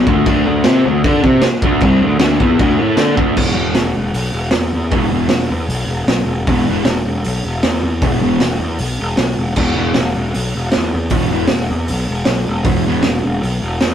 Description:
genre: garage rock duo or trio.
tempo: 155 BPM.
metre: 4/4.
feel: straight.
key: unclear.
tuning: A4 = 439 Hz.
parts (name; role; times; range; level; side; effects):
fuzz guitar; riff; 0.0-13.0 s; E2 to D5; -16 LUFS; equal; distortion.
fuzz picked electric bass; bass; 0.0-13.9 s; E1 to D3; -18 LUFS; equal; overdrive, tube saturation.
raw garage drum kit; drums; 0.1-13.9 s; crash cymbal, hi-hat, kick drum, snare drum; -17 LUFS; equal; none.
room: moderate small room reverb, RT60 0.5 s.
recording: rough rehearsal-room recording, warm saturation.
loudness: -13 LUFS.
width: side -9 dB against mid.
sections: 0.0-3.4 A section; 3.4-13.9 B section.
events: none.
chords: 0.1 D5; 3.4 E5.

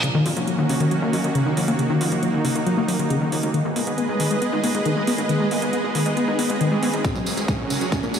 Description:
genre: uplifting trance.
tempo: 137 BPM.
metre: 4/4.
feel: straight.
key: Eb minor.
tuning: A4 = 440 Hz.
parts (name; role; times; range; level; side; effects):
supersaw pad; sustained chords; 0.0-8.2 s; Eb3 to Eb5; -24 LUFS; right 2 dB; sidechain pumping.
wide unison pluck; arpeggios; 0.0-8.2 s; Db3 to Eb4; -22 LUFS; left 2 dB; sidechain pumping, ping-pong delay.
electronic hi-hat and tambourine; drums; 0.0-8.2 s; none; -31 LUFS; right 3 dB; sidechain pumping on hats, sidechain pumping on perc.
reverse cymbal and riser; sound effects; 0.0-8.2 s; none; -30 LUFS; right 3 dB; none.
plucky analog bass; bass; 0.1-8.2 s; Gb1 to Ab2; -31 LUFS; equal; sidechain pumping, high-pass filter.
electronic kick drum; drums; 7.0-8.0 s; none; -25 LUFS; equal; none.
room: moderate huge ambient reverb, RT60 5.9 s.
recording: played on a big sound system in a bare room, large studio reverb, high-pass filter.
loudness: -19 LUFS.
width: side -8 dB against mid.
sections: 0.0-8.2 A section.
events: build-up 0.0-8.2; riser 0.0-8.2; filter sweep on synth pluck 0.0-8.2; drum fill 7.0-8.2.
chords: 0.0 Ebm7; 3.5 Abm; 7.0 Gbadd9.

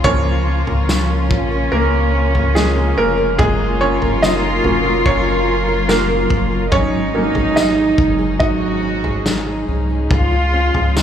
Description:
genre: pop ballad.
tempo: 72 BPM.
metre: 4/4.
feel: straight.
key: unclear.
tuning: A4 = 440 Hz.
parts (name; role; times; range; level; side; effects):
dark chamber cello section; second line; 0.0-11.0 s; Bb3 to Gb4; -21 LUFS; right 1 dB; slapback echo.
clear baby grand piano; accompaniment; 0.0-10.1 s; F3 to Eb5; -19 LUFS; right 3 dB; slapback echo.
dark studio string section; sustained chords; 0.0-11.0 s; F3 to Bb4; -23 LUFS; left 2 dB; none.
fingerpicked plugged-in steel-string acoustic guitar; arpeggios; 0.0-11.0 s; Ab2 to Bb4; -24 LUFS; left 1 dB; tape echo, slapback echo.
warm sub bass; bass; 0.0-11.0 s; F1 to Db2; -20 LUFS; equal; none.
loose indie drum kit; drums; 0.0-11.0 s; kick drum, snare drum, toms; -20 LUFS; left 1 dB; none.
tambourine; percussion; 0.9-11.0 s; none; -31 LUFS; left 2 dB; none.
room: light reverb.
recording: live gig heard through the venue's PA, club reverb.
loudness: -14 LUFS.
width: side -9 dB against mid.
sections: 0.0-11.0 A section.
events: grand piano solo 0.0-11.0.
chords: 0.0 Bbm; 3.4 Gb; 6.7 Ab7sus4; 10.1 Db.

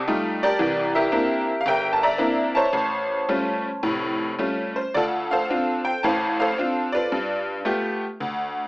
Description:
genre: solo jazz.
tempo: 111 BPM.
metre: 4/4.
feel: swing 67% on 8ths, rubato.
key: C mixolydian.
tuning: A4 = 440 Hz.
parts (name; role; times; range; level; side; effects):
tack piano; solo; 0.0-8.7 s; E#1 to Bb5; -21 LUFS; equal; none.
room: moderate studio reverb, RT60 0.5 s.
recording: AM radio sound.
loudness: -20 LUFS.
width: side -22 dB against mid.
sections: 0.0-8.7 A section.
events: none.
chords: 0.0 F9; 0.6 C9; 2.7 A7alt; 5.0 Dm7; 7.1 G9.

